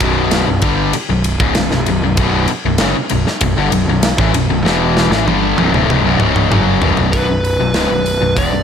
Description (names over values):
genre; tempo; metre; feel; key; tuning
hard rock; 97 BPM; 4/4; straight; B minor; A4 = 441 Hz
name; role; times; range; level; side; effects
sludgy distorted guitar; riff; 0.0-8.6 s; B1 to G3; -19 LUFS; right 8 dB; overdrive
tight distorted guitar; riff; 0.0-8.6 s; B1 to G3; -17 LUFS; left 10 dB; distortion
fuzz picked electric bass; bass; 0.0-8.6 s; B0 to A1; -18 LUFS; right 1 dB; overdrive
tight metal drum kit; drums; 0.0-8.5 s; hi-hat, kick drum, ride cymbal, snare drum, toms; -18 LUFS; equal; none
smooth overdriven lead guitar; melody; 7.1-8.6 s; B4 to D5; -17 LUFS; equal; none
room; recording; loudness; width
moderate large studio reverb, RT60 1.1 s, small room ambience; none; -12 LUFS; side -8 dB against mid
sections
0.0-7.1 A section; 7.1-8.6 B section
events
drum fill 4.7-7.1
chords
0.0 Bm; 7.1 B5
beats
0.32 0.94 1.56 | 2.18 2.80 3.42 4.04 | 4.66 5.28 5.89 6.51 | 7.13 7.75 8.37